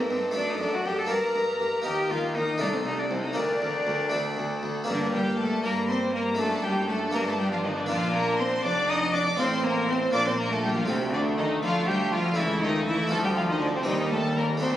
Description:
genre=classical, baroque-style concerto movement with solo episodes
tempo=80 BPM (dotted quarters)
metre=6/8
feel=straight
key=G minor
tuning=A4 = 438 Hz
part: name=rich cello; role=melody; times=0.0-14.8 s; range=C3 to Bb4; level=-29 LUFS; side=left 1 dB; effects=none
part: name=warm chamber violin section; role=melody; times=0.0-14.8 s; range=C5 to Eb6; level=-34 LUFS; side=left 1 dB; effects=none
part: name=rich chamber violin section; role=second line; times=0.0-14.8 s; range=C4 to Bb5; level=-30 LUFS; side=left 1 dB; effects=none
part: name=dark chamber viola section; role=accompaniment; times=0.0-14.8 s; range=F3 to Bb4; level=-32 LUFS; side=equal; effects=none
part: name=harpsichord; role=accompaniment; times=0.0-14.8 s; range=C2 to G4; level=-32 LUFS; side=equal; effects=none
part: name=warm chamber cello section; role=bass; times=0.1-14.8 s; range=C2 to G3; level=-35 LUFS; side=right 1 dB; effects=none
part: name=warm studio double bass section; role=bass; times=4.9-14.8 s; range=F1 to G2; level=-34 LUFS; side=right 2 dB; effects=none
room=moderate recital hall reverb, RT60 1.4 s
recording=recorded on a phone in the room, studio reverb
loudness=-23 LUFS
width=side -12 dB against mid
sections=0.0-4.9 A section; 4.9-14.8 B section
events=none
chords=0.4 D/F#; 1.1 Gm; 1.9 Eb5; 2.6 Adim/C; 3.4 Gm/D; 4.1 D; 4.9 Gm; 6.4 D/F#; 7.1 Gm; 7.9 Bb; 9.4 F/A; 10.1 Bb5; 10.9 Dm; 12.4 A/C#; 13.1 Dm; 13.9 Cm/Eb

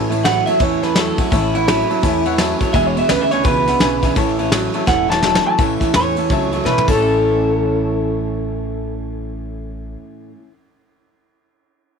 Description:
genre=rockabilly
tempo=168 BPM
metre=4/4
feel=swing 62% on 8ths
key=A major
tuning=A4 = 439 Hz
part: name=bright upright piano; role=accompaniment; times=0.0-10.0 s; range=B4 to B5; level=-27 LUFS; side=left 11 dB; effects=none
part: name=picked steel-string acoustic guitar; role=accompaniment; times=0.0-10.5 s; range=E2 to E4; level=-25 LUFS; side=left 13 dB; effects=none
part: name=electric guitar through a small old amp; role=riff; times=0.0-10.4 s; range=E2 to C#5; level=-22 LUFS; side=right 10 dB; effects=wide subtle chorus
part: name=upright bass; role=bass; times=0.0-9.9 s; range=E1 to E2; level=-24 LUFS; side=left 1 dB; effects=none
part: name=soft brush drum kit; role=drums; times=0.1-6.9 s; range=crash cymbal, kick drum, ride cymbal, snare drum, toms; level=-20 LUFS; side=left 1 dB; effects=none
part: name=electric guitar through a small old amp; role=melody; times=0.2-9.9 s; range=E4 to A5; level=-19 LUFS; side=right 1 dB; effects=tape echo
room=little or no reverb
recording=1960s-style stereo with parts hard left and right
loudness=-14 LUFS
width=side -6 dB against mid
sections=0.0-5.6 A section; 5.6-7.0 B section; 7.0-9.9 C section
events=drum fill 4.9-5.6, 6.7-7.0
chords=0.0 A; 2.7 E7; 4.2 A

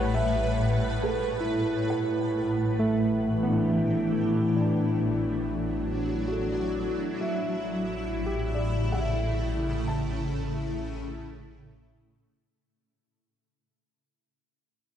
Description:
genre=ambient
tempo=68 BPM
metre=3/4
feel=straight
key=A mixolydian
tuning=A4 = 441 Hz
part: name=felt-muted upright piano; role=melody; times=0.0-11.6 s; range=A4 to A5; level=-35 LUFS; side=equal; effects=tape echo
part: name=shimmering ambient pad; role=sustained chords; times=0.0-12.5 s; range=A2 to C#5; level=-28 LUFS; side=equal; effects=chorus, built-in reverb, phaser
part: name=overdriven tine electric piano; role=arpeggios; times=0.0-12.8 s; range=A3 to C#5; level=-30 LUFS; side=equal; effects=tape echo
part: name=round analog bass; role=bass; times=0.0-12.5 s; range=A1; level=-35 LUFS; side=equal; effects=none
part: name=twinkling granular texture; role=texture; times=0.0-1.9 s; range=A5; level=-47 LUFS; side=right 2 dB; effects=none
room=wet cathedral reverb, RT60 6.0 s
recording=dark, warm production, nothing above 10.3 kHz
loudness=-25 LUFS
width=side -9 dB against mid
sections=0.0-1.9 A section; 1.9-12.5 B section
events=fade-in on analog synth bass 1.9-12.5; fade-in on felt piano 1.9-12.5; fade-out 9.0-12.5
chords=0.0 A9; 1.9 Em/A; 4.6 Dadd9/A; 7.2 A

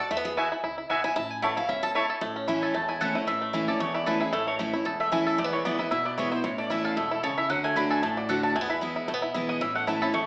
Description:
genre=bluegrass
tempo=227 BPM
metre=4/4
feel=swing 54% on 8ths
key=A major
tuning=A4 = 440 Hz
part: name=bluegrass banjo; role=melody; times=0.0-10.3 s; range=E3 to A4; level=-29 LUFS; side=equal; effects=none
part: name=picked steel-string acoustic guitar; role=accompaniment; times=0.0-10.3 s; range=E2 to A5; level=-29 LUFS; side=equal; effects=none
part: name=upright bass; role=bass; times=0.1-10.3 s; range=E1 to E2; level=-44 LUFS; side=equal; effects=none
part: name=mandolin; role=stabs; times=0.4-10.3 s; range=A3 to C#6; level=-28 LUFS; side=equal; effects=none
room=wet large studio reverb, RT60 0.8 s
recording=heard from further back in the room, AM radio sound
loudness=-24 LUFS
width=side -29 dB against mid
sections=0.0-2.2 A section; 2.2-10.3 A section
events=steel-string acoustic guitar solo 0.0-2.2; mandolin solo 2.2-10.3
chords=0.1 Eadd9; 1.2 A; 5.4 E; 6.4 A; 7.5 D; 8.6 E; 9.6 A

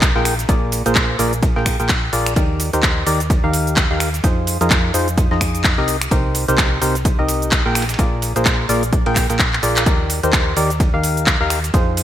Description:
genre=piano house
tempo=128 BPM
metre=4/4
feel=swing 58% on 16ths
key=Bb mixolydian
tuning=A4 = 437 Hz
part: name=percussive organ stab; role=riff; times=0.0-12.0 s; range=C3 to G5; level=-20 LUFS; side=equal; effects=chorus, sidechain pumping, digital delay
part: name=hollow-body short-scale fingered electric bass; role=bass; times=0.0-12.0 s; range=Bb1 to F2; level=-22 LUFS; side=equal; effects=sidechain pumping
part: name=dusty soul sampler-style drum kit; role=drums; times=0.0-12.0 s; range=hi-hat, ride cymbal, snare drum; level=-31 LUFS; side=right 2 dB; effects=none
part: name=electronic kick drum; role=drums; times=0.0-11.8 s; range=none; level=-18 LUFS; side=equal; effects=none
part: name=house drum kit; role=drums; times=0.0-12.0 s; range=finger snaps, handclaps, hi-hat, shaker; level=-20 LUFS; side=equal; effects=gated reverb
room=light reverb, digital ambience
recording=bright 1980s-style digital production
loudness=-14 LUFS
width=side -11 dB against mid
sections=0.0-12.0 A section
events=drum fill 9.5-9.9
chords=0.3 Bb7; 2.4 Ebmaj7; 4.2 Fm7; 5.9 Cm7; 7.8 Bb7; 9.9 Ebmaj7

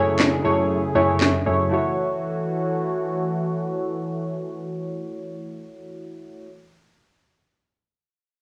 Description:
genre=dance-pop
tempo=118 BPM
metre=4/4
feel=straight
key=F# minor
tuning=A4 = 440 Hz
part: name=warm analog keys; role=accompaniment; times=0.0-6.5 s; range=F#2 to C#5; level=-26 LUFS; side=equal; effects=chorus, low-pass filter, cassette tape
part: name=warm analog pad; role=sustained chords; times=0.0-6.5 s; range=F#2 to G#4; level=-30 LUFS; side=equal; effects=chorus, low-pass filter, cassette tape
part: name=downlifter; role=sound effects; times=0.1-1.7 s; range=none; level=barely audible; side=none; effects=none
part: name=electronic handclaps and snare drum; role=drums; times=0.2-1.3 s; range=none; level=-23 LUFS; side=equal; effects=overdrive, cassette tape
room=wet booth ambience, RT60 0.2 s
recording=home recording on cassette, small room ambience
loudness=-23 LUFS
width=mono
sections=0.0-1.7 A section; 1.7-5.8 B section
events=none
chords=0.0 Amaj7/F#; 1.7 F#m7

